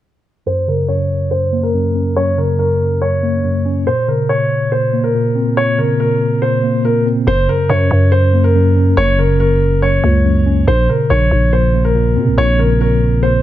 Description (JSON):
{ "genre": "hip hop, drill", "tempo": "141 BPM", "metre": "4/4", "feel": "half-time", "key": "unclear", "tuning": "A4 = 440 Hz", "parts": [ { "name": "dark grand piano", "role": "melody", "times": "0.5-13.4 s", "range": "Bb4 to Db5", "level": "-16 LUFS", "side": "equal", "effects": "low-pass filter" }, { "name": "mellow tine electric piano", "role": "accompaniment", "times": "0.5-13.4 s", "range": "Gb2 to Db4", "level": "-16 LUFS", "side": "equal", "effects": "medium stereo tremolo, low-pass filter" }, { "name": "growling 808-style bass", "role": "bass", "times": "7.3-13.4 s", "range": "Gb1 to Db3", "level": "-14 LUFS", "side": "equal", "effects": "none" } ], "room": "studio reverb", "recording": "none", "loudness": "-12 LUFS", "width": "side -13 dB against mid", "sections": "0.5-7.3 A section; 7.3-13.4 B section", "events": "filter sweep 0.5-7.3", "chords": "0.5 Gb; 3.9 Bbmadd9; 7.3 Gb; 10.7 Bbmadd9", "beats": "| 0.46 0.89 1.31 1.74 | 2.16 2.59 3.02 3.44 | 3.87 4.29 4.72 5.14 | 5.57 5.99 6.42 6.84 | 7.27 7.70 8.12 8.55 | 8.97 9.40 9.82 10.25 | 10.68 11.10 11.53 11.95 | 12.38 12.80 13.23" }